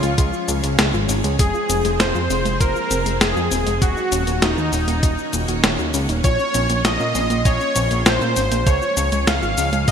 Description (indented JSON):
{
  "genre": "synthwave",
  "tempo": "99 BPM",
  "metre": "4/4",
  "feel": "straight",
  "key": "Bb minor",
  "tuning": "A4 = 440 Hz",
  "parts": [
    { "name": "soft supersaw", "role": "melody", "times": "0.0-9.9 s", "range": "Eb4 to F5", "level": "-22 LUFS", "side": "equal", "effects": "ping-pong delay" },
    { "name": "soft synth bell", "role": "second line", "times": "0.0-9.9 s", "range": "Eb4 to F5", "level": "-31 LUFS", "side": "left 1 dB", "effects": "none" },
    { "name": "string machine, full ensemble", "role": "sustained chords", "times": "0.0-9.9 s", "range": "F3 to C6", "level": "-27 LUFS", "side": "equal", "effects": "ensemble chorus, vintage 12-bit sampler grit, sidechain pumping" },
    { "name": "soft round pluck", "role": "arpeggios", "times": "0.0-9.9 s", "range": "Ab3 to Db5", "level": "-28 LUFS", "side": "left 2 dB", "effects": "chorus, ping-pong delay" },
    { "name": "fat analog bass", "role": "bass", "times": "0.0-9.9 s", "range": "Eb1 to Bb2", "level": "-22 LUFS", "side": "equal", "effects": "sidechain pumping" },
    { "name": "clean 12-bit digital drum machine", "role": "drums", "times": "0.0-9.9 s", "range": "cabasa, hi-hat, snare drum", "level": "-22 LUFS", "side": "equal", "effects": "gated reverb" },
    { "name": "electronic kick drum", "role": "drums", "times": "0.2-9.9 s", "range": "none", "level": "-18 LUFS", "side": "equal", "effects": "none" }
  ],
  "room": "moderate lush hall reverb, RT60 2.5 s",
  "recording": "bright 1980s-style digital production",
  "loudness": "-16 LUFS",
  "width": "side -7 dB against mid",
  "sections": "0.0-9.9 A section",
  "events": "none",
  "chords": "0.0 Db; 1.4 Fm; 3.8 Ebm7; 6.2 Bbmadd9; 8.7 Db"
}